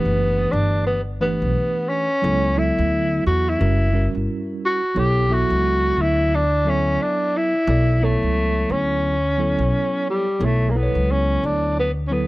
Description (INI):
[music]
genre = hip hop, jazz-hop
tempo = 88 BPM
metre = 4/4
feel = swing 60% on 16ths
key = B minor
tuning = A4 = 440 Hz
[part]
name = breathy tenor saxophone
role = melody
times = 0.0-12.3 s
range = G3 to G4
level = -21 LUFS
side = equal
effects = none
[part]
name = mellow tine electric piano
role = accompaniment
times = 0.0-12.3 s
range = E3 to E5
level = -25 LUFS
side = right 2 dB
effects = medium stereo tremolo
[part]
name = upright bass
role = bass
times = 0.1-12.3 s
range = F#1 to E2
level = -21 LUFS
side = equal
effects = none
[sound]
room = small room reverb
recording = dry, close 1970s-style studio recording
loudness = -18 LUFS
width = side -19 dB against mid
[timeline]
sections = 0.0-10.4 A section; 10.4-12.3 A section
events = none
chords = 0.0 Em9; 2.2 Bm11/C#; 3.6 F#7b9; 5.0 Bm9